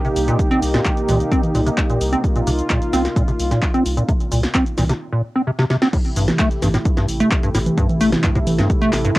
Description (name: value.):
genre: acid house.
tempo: 130 BPM.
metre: 4/4.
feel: straight.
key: unclear.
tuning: A4 = 440 Hz.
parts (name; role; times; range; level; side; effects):
warm analog pad; sustained chords; 0.0-9.2 s; C3 to G4; -23 LUFS; equal; chorus, sidechain pumping, cassette tape.
acid bass, square; riff; 0.0-9.2 s; G2 to C4; -19 LUFS; equal; analog chorus, sidechain pumping, cassette tape, analog delay.
punchy analog drum machine; drums; 0.0-9.2 s; cabasa, congas, crash cymbal, handclaps, hi-hat, snare drum; -23 LUFS; equal; overdrive, cassette tape.
round analog bass; bass; 0.2-9.1 s; A1 to C2; -23 LUFS; equal; tube saturation, sidechain pumping.
electronic kick drum; drums; 0.4-9.2 s; none; -19 LUFS; equal; overdrive, cassette tape.
room: little or no reverb.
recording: home recording on cassette.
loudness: -16 LUFS.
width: side -18 dB against mid.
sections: 0.0-5.9 A section; 5.9-9.2 B section.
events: filter sweep on acid bass 0.0-5.9; drum fill 5.6-5.9; drop 5.9-9.2.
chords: 0.0 Cm7; 5.9 Am7.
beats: | 0.39 0.85 1.32 1.78 | 2.24 2.70 3.16 3.62 | 4.08 4.55 5.01 5.47 | 5.93 6.39 6.85 7.32 | 7.78 8.24 8.70 9.16.